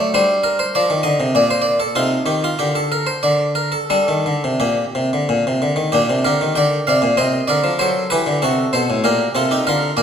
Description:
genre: classical, baroque-style suite movement for harpsichord.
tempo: 87-100 BPM.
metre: 3/4.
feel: rubato.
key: G minor.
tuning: A4 = 440 Hz.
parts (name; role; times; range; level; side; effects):
harpsichord; solo; 0.0-10.0 s; A2 to G5; -15 LUFS; equal; none.
room: wet recital hall reverb, RT60 1.7 s.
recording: none.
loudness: -15 LUFS.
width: side -8 dB against mid.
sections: 0.0-5.9 A section; 5.9-10.0 B section.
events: none.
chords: 0.1 Gm; 1.9 Cmadd11; 2.6 N.C.; 3.9 Gm; 5.9 Gm/Bb; 7.8 F#dim; 9.0 Gm/Bb.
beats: | 0.11 0.72 1.32 | 1.94 2.56 3.21 | 3.88 4.57 5.25 | 5.91 6.55 7.17 | 7.79 8.42 9.04 | 9.66.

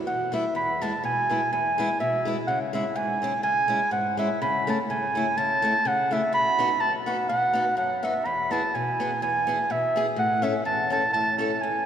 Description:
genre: alpine folk.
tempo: 125 BPM.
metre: 2/4.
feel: swing 54% on 8ths.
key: E major.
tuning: A4 = 438 Hz.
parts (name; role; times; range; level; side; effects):
dark clarinet; melody; 0.0-11.9 s; E5 to B5; -23 LUFS; right 2 dB; none.
picked steel-string acoustic guitar; accompaniment; 0.1-11.9 s; E2 to A4; -29 LUFS; left 3 dB; none.
room: wet cathedral reverb, RT60 4.5 s.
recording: recorded in a church or concert hall.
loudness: -22 LUFS.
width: side -9 dB against mid.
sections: 0.6-11.9 A section.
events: none.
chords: 0.0 Em; 0.6 E; 2.5 C#m; 4.4 A/C#; 6.3 B; 8.2 E; 10.2 A.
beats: 0.07 | 0.56 1.04 | 1.52 1.99 | 2.47 2.95 | 3.43 3.91 | 4.39 4.88 | 5.36 5.84 | 6.32 6.80 | 7.28 7.76 | 8.24 8.73 | 9.21 9.69 | 10.17 10.65 | 11.14 11.62.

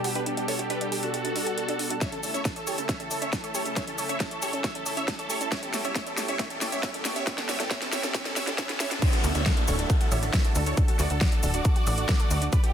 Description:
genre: uplifting trance.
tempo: 137 BPM.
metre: 4/4.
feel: straight.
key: D major.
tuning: A4 = 442 Hz.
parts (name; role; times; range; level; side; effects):
big supersaw lead; melody; 0.0-12.7 s; F#4 to E5; -32 LUFS; right 1 dB; phaser, sidechain pumping, low-pass filter, tape echo.
lush unison pad; sustained chords; 0.0-12.7 s; B2 to A4; -35 LUFS; equal; chorus, sidechain pumping.
analog pluck; arpeggios; 0.0-12.7 s; A3 to D5; -36 LUFS; right 4 dB; chorus, sidechain pumping, ping-pong delay.
big-room dance drum kit; drums; 0.0-12.7 s; crash cymbal, hi-hat, shaker, snare drum; -31 LUFS; equal; overdrive.
electronic kick drum; drums; 2.0-12.6 s; none; -25 LUFS; equal; overdrive.
riser and downlifter; sound effects; 4.4-12.5 s; none; -38 LUFS; right 1 dB; none.
tight sequencer bass; bass; 9.2-12.5 s; D1 to D2; -27 LUFS; equal; sidechain pumping.
room: light reverb.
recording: dense, heavily limited modern master, high-pass filter.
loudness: -24 LUFS.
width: side -9 dB against mid.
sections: 0.0-9.0 A section; 9.0-12.7 B section.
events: build-up 0.0-9.0; filter sweep on supersaw synth 0.0-9.0; filter sweep on synth pluck 0.0-9.0; drum fill 2.0-9.0; drop 9.0-12.7.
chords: 0.0 Gadd9; 2.0 A; 5.5 Em; 9.0 Dadd9.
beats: | 0.26 0.70 1.14 1.58 | 2.02 2.45 2.89 3.33 | 3.77 4.21 4.64 5.08 | 5.52 5.96 6.39 6.83 | 7.27 7.71 8.15 8.58 | 9.02 9.46 9.90 10.34 | 10.77 11.21 11.65 12.09 | 12.53.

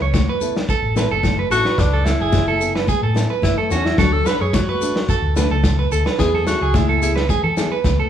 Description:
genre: highlife guitar band.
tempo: 109 BPM.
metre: 4/4.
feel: straight.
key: A major.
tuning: A4 = 439 Hz.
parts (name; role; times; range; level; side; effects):
nylon-string guitar; accompaniment; 0.0-7.8 s; F#3 to A4; -27 LUFS; left 5 dB; none.
clean electric guitar; arpeggios; 0.0-8.1 s; F#4 to C#5; -22 LUFS; right 6 dB; none.
hollow-body short-scale fingered electric bass; bass; 0.0-8.0 s; F#1 to E3; -21 LUFS; equal; none.
vintage drum kit; drums; 0.1-8.0 s; kick drum, snare drum; -22 LUFS; equal; none.
congas; percussion; 0.1-8.0 s; none; -26 LUFS; left 4 dB; none.
shekere; percussion; 0.1-8.0 s; none; -28 LUFS; left 2 dB; none.
clear tenor saxophone; melody; 1.5-7.2 s; A3 to B4; -22 LUFS; left 2 dB; none.
room: moderate large studio reverb, RT60 1.2 s.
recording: band playing live in one room.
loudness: -16 LUFS.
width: side -9 dB against mid.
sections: 0.0-8.1 A section.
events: tenor saxophone solo 0.0-8.1.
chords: 0.0 Asus2; 4.0 D; 6.2 E.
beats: 0.13 0.68 1.23 | 1.78 2.33 2.88 3.44 | 3.99 4.54 5.09 5.64 | 6.19 6.75 7.30 7.85.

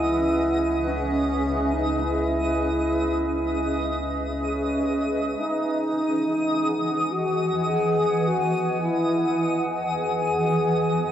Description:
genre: ambient.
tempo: free time.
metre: none.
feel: none.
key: E major.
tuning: A4 = 443 Hz.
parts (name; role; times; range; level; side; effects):
wooden-headed alto flute; melody; 0.0-11.1 s; C#4 to G#4; -24 LUFS; equal; plate reverb.
granular cloud pad; sustained chords; 0.0-11.1 s; E3 to G#5; -26 LUFS; equal; built-in reverb, cassette tape, plate reverb.
warm sub bass; bass; 0.0-5.4 s; C#2; -32 LUFS; equal; none.
twinkling granular texture; texture; 0.0-11.1 s; D#6; -32 LUFS; equal; built-in reverb, cassette tape, plate reverb.
room: wet studio reverb, RT60 0.5 s.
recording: home recording on cassette.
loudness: -21 LUFS.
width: side -10 dB against mid.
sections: 0.0-5.4 A section; 5.4-11.1 B section.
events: none.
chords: 0.0 C#m7; 5.4 Emaj7.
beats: free time.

